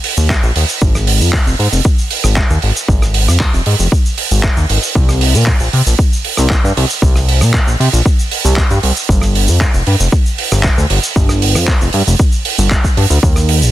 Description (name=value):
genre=nu-disco, nu disco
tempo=116 BPM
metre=4/4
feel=straight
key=unclear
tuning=A4 = 440 Hz
part: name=damped 70s drum kit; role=drums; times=0.0-13.7 s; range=handclaps, hi-hat, rim click, shaker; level=-16 LUFS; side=right 3 dB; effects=none
part: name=chorused synth bass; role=bass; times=0.2-13.7 s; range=F1 to C3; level=-12 LUFS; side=equal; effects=none
part: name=electronic kick drum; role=drums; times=0.3-13.3 s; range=none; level=-13 LUFS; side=equal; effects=none
room=little or no reverb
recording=dense, heavily limited modern master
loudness=-10 LUFS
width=side -14 dB against mid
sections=0.0-13.7 A section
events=none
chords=none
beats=0.30 | 0.82 1.33 1.85 2.37 | 2.88 3.40 3.92 4.44 | 4.95 5.47 5.99 6.51 | 7.02 7.54 8.06 8.57 | 9.09 9.61 10.13 10.64 | 11.16 11.68 12.20 12.71 | 13.23